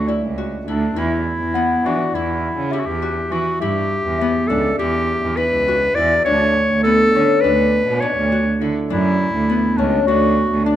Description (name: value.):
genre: contemporary instrumental, chamber music in an uneven meter.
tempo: 204 BPM (eighths).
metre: 9/8.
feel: straight.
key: E dorian.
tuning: A4 = 440 Hz.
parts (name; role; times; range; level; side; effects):
bright clarinet; melody; 0.0-10.8 s; D4 to D5; -19 LUFS; left 1 dB; none.
Celtic harp; arpeggios; 0.0-10.8 s; B3 to F#4; -23 LUFS; left 6 dB; none.
rich cello; bass; 0.0-10.6 s; C#2 to E3; -20 LUFS; right 3 dB; none.
celesta; texture; 0.1-5.4, 10.1-10.8 s; D5 to F#5; -27 LUFS; left 2 dB; none.
room: wet recital hall reverb, RT60 1.4 s.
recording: none.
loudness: -15 LUFS.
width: side -11 dB against mid.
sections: 0.0-10.8 A section.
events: none.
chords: 0.0 Dadd9; 1.0 Em; 6.3 Dmaj7.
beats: 0.07 0.37 0.66 | 0.96 1.25 1.54 1.84 2.13 2.43 2.72 3.02 3.31 | 3.60 3.90 4.19 4.49 4.78 5.08 5.37 5.66 5.96 | 6.25 6.55 6.84 7.13 7.43 7.72 8.02 8.31 8.60 | 8.90 9.19 9.48 9.78 10.07 10.36 10.66.